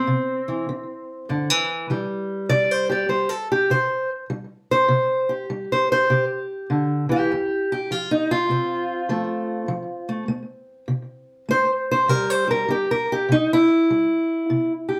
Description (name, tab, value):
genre	acoustic country blues, solo or duo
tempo	100 BPM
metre	4/4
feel	swing 65% on 8ths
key	C mixolydian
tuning	A4 = 439 Hz
part	fingerpicked steel-string acoustic guitar	solo	0.0-15.0 s	F2 to D5	-22 LUFS	equal	slapback echo
room	moderate studio ambience, RT60 0.4 s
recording	heard from further back in the room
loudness	-22 LUFS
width	mono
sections	0.0-15.0 A section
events	steel-string acoustic guitar solo 0.0-15.0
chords	0.0 C; 7.3 F; 12.1 C